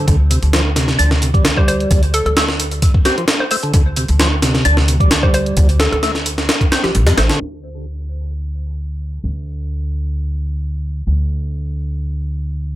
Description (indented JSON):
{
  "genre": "breakbeat, breaks",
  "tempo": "131 BPM",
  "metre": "4/4",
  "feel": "straight",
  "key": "D minor pentatonic",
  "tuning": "A4 = 436 Hz",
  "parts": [
    { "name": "hollow square pluck", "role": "melody", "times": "0.0-7.4 s", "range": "G4 to C5", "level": "-23 LUFS", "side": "equal", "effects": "chorus, old record sound, vintage 12-bit sampler grit, digital delay" },
    { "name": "percussive tonewheel organ", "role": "riff", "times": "0.0-7.4 s", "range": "C3 to D4", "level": "-20 LUFS", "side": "equal", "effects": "chorus vibrato, slow rotary speaker, digital delay" },
    { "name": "upright bass", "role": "bass", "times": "0.1-12.8 s", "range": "A1 to F2", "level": "-18 LUFS", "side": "equal", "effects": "tube saturation, low-pass filter" },
    { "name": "breakbeat sampler-style drum kit", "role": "drums", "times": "0.1-7.4 s", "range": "hi-hat, kick drum, snare drum", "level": "-15 LUFS", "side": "equal", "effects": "none" },
    { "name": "electronic hi-hat", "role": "drums", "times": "0.1-7.4 s", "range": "none", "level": "-27 LUFS", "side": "right 1 dB", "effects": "none" }
  ],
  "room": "digital ambience",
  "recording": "low-pass filter",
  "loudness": "-14 LUFS",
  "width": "side -14 dB against mid",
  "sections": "0.0-7.4 A section; 7.4-12.8 B section",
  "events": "filter sweep 7.4-12.8",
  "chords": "none",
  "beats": "| 0.08 0.54 0.99 1.45 | 1.91 2.37 2.83 3.28 | 3.74 4.20 4.66 5.12 | 5.57 6.03 6.49 6.95 | 7.41 7.86 8.32 8.78 | 9.24 9.70 10.15 10.61 | 11.07 11.53 11.99 12.44"
}